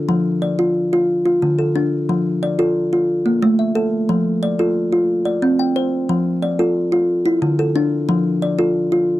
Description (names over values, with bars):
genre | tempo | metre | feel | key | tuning
southern african traditional, mbira-style interlocking cycle | 120 BPM (dotted quarters) | 12/8 | straight | F major | A4 = 441 Hz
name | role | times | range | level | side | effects
kalimba | solo | 0.0-9.1 s | D3 to G5 | -16 LUFS | equal | none
room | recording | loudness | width
light reverb | dry, close 1970s-style studio recording | -16 LUFS | side -16 dB against mid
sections
0.0-2.1 A section; 2.1-9.2 B section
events
none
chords
0.1 Dm/F; 1.1 Dm; 2.1 F; 3.1 A5; 4.1 F; 5.1 C5; 6.1 F; 7.1 D5; 8.1 F